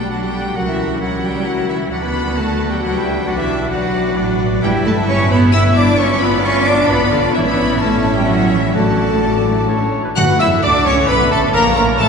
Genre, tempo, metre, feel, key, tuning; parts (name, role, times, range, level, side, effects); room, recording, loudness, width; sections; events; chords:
quick classical-period movement for symphony orchestra; 132 BPM; 3/4; straight; B minor, D major from 4.6 s; A4 = 440 Hz
rich chamber violin section; melody; 0.0-12.1 s; C#5 to F#6; -24 LUFS; left 3 dB
clear chamber violin section; second line; 0.0-12.1 s; A4 to E6; -26 LUFS; left 2 dB
clear oboe; second line; 0.0-12.1 s; C#4 to F#5; -25 LUFS; right 1 dB
hollow concert flute; second line; 0.0-12.1 s; D5 to F#6; -25 LUFS; left 1 dB
warm clarinet; second line; 0.0-12.1 s; D4 to F#5; -24 LUFS; left 3 dB
warm studio viola section; accompaniment; 0.0-12.1 s; D4 to E5; -26 LUFS; equal
mellow French horn section; sustained chords; 0.0-12.1 s; A3 to F#4; -23 LUFS; left 3 dB
rich chamber cello section; bass; 0.0-12.1 s; D3 to F#4; -18 LUFS; right 1 dB
rich chamber double bass section; bass; 0.0-12.1 s; G1 to F#2; -21 LUFS; right 2 dB
timpani; percussion; 8.8-10.8 s; A2 to D3; -23 LUFS; right 1 dB
warm bassoon; accompaniment; 10.2-12.1 s; A3 to F#4; -21 LUFS; equal
bright trumpet; stabs; 10.2-12.1 s; A4 to F#5; -21 LUFS; right 1 dB
wet cathedral reverb, RT60 5.9 s; recorded in a church or concert hall, nothing above 11.0 kHz; -13 LUFS; side -5 dB against mid
0.0-10.2 A section; 10.2-12.1 B section
0.0 Bm; 0.6 F#7/C#; 1.9 Bm/D; 3.3 Bm; 4.6 Em/G; 6.0 G#dim7; 7.4 A; 8.8 D/A; 9.7 A; 10.2 D; 11.5 C#m6